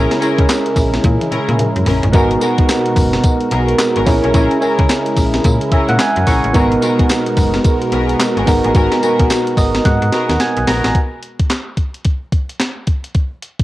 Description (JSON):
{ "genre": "R&B, new jack swing", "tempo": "109 BPM", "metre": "4/4", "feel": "swing 62% on 16ths", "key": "G# minor", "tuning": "A4 = 440 Hz", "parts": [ { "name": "soft electric-piano-like synth keys", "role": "accompaniment", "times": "0.0-11.0 s", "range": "B3 to C#6", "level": "-17 LUFS", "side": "right 2 dB", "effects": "chorus, cassette tape" }, { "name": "phased analog pad", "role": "sustained chords", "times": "0.0-10.9 s", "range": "B2 to A#4", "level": "-22 LUFS", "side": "equal", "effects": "phaser, chorus, cassette tape" }, { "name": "warm symphonic string section", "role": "stabs", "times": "0.0-10.8 s", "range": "B3 to A#4", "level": "-21 LUFS", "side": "left 2 dB", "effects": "cassette tape, tape echo" }, { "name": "slap-like FM bass", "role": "bass", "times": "0.0-10.9 s", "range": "F#1 to A#2", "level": "-18 LUFS", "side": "equal", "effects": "none" }, { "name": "clean 12-bit digital drum machine", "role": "drums", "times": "0.1-13.6 s", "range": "handclaps, hi-hat, kick drum, snare drum, tambourine, toms", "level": "-16 LUFS", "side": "equal", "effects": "cassette tape" } ], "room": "light reverb", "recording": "home recording on cassette", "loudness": "-12 LUFS", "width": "side -16 dB against mid", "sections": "0.0-10.9 A section; 10.9-13.6 B section", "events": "drum fill 1.0-2.1, 9.8-10.9; synth keys fill 5.4-6.5, 9.3-10.9", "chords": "0.0 A#m7b5; 2.1 G#m9; 4.1 A#m7b5; 6.5 G#m9; 10.9 N.C." }